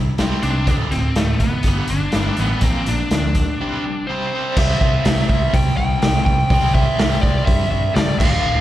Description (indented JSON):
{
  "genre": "hard rock",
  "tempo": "124 BPM",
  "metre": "4/4",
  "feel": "straight",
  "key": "unclear",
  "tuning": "A4 = 440 Hz",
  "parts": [
    { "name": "cranked stack guitar", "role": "riff", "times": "0.0-8.6 s", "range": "D2 to C4", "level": "-24 LUFS", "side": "equal", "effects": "overdrive, tremolo, slapback echo" },
    { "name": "fingered electric bass", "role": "bass", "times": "0.0-8.6 s", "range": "D1 to G2", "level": "-20 LUFS", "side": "equal", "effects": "none" },
    { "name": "raw garage drum kit", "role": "drums", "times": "0.2-8.3 s", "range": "crash cymbal, hi-hat, kick drum, snare drum", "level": "-19 LUFS", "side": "equal", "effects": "none" },
    { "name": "biting lead guitar", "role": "melody", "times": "0.4-8.6 s", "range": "A3 to G5", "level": "-22 LUFS", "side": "equal", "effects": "overdrive, slapback echo" }
  ],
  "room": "little or no reverb",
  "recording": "live gig heard through the venue's PA, recital hall reverb",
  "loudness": "-15 LUFS",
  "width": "side -13 dB against mid",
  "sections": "0.0-4.6 A section; 4.6-8.6 B section",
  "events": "break 3.6-4.6",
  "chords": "0.0 C5; 0.7 Dm; 1.6 G5; 2.6 Bb; 3.6 C5; 4.6 C",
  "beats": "0.18 | 0.67 1.16 1.65 2.14 | 2.62 3.11 3.60 4.08 | 4.57 5.06 5.54 6.02 | 6.51 6.99 7.47 7.96 | 8.44"
}